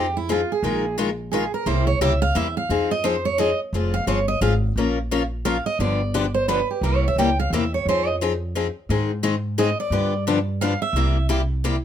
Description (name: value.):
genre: acoustic string swing (jazz manouche).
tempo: 174 BPM.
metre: 3/4.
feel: swing 60% on 8ths.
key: F minor.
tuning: A4 = 441 Hz.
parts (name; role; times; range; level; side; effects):
picked steel-string acoustic guitar; second line; 0.0-11.3 s; E4 to G5; -24 LUFS; right 3 dB; none.
picked steel-string acoustic guitar; accompaniment; 0.0-11.8 s; C3 to Bb4; -23 LUFS; left 5 dB; none.
upright bass; bass; 0.0-11.8 s; F1 to Ab2; -24 LUFS; right 1 dB; none.
room: light reverb.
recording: minimal, uncompressed stereo recording.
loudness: -20 LUFS.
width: side -9 dB against mid.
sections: 0.0-3.7 A section; 3.7-11.8 A section.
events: steel-string acoustic guitar solo 0.0-11.8.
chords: 0.0 Fm7; 0.6 Bb7sus4; 1.7 C7; 2.7 Fm7; 3.7 Fm; 4.8 Bbm; 5.8 G7; 6.8 C7; 7.9 Fm7; 8.9 Ab; 9.9 G7; 11.0 C7.